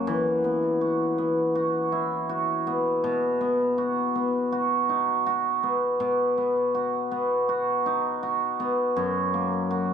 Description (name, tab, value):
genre	folktronica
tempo	81 BPM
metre	4/4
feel	straight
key	B major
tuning	A4 = 439 Hz
part	cimbalom	solo	0.0-9.9 s	F#2 to F#4	-23 LUFS	equal	digital delay
room	moderate small room reverb, RT60 0.5 s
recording	dark, warm production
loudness	-23 LUFS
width	side -8 dB against mid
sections	0.0-9.9 A section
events	none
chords	0.1 Esus2; 3.0 B; 9.0 F#